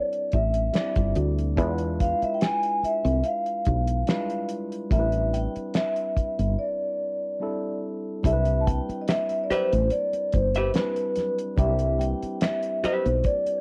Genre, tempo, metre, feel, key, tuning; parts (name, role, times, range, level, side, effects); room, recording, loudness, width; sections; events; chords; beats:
R&B, neo-soul; 72 BPM; 4/4; swing 53% on 16ths; C major; A4 = 436 Hz
vibraphone with soft mallets; melody; 0.0-13.6 s; B4 to A5; -29 LUFS; equal; cassette tape, plate reverb
tine electric piano; accompaniment; 0.0-13.6 s; G3 to D5; -35 LUFS; equal; cassette tape, plate reverb
cloth-damped thuddy drum kit; drums; 0.1-13.6 s; finger snaps, hi-hat, kick drum, snare drum; -28 LUFS; equal; cassette tape
woody fretless electric bass; bass; 0.3-13.2 s; G1 to E2; -27 LUFS; equal; analog chorus
congas; percussion; 8.2-13.6 s; -44 LUFS; equal
vintage hollow-body jazz guitar; second line; 9.1-13.1 s; G4 to E5; -31 LUFS; equal; cassette tape, plate reverb
moderate booth ambience, RT60 0.2 s; home recording on cassette; -25 LUFS; mono
0.0-8.2 A section; 8.2-13.6 A section
break 6.6-8.2
0.0 Cmaj7; 1.6 E7b9; 4.9 Am11; 7.4 C69; 8.2 Cmaj7
0.74 | 1.57 2.41 3.24 4.07 | 4.91 5.74 6.57 7.41 | 8.24 9.07 9.91 10.74 | 11.57 12.41 13.24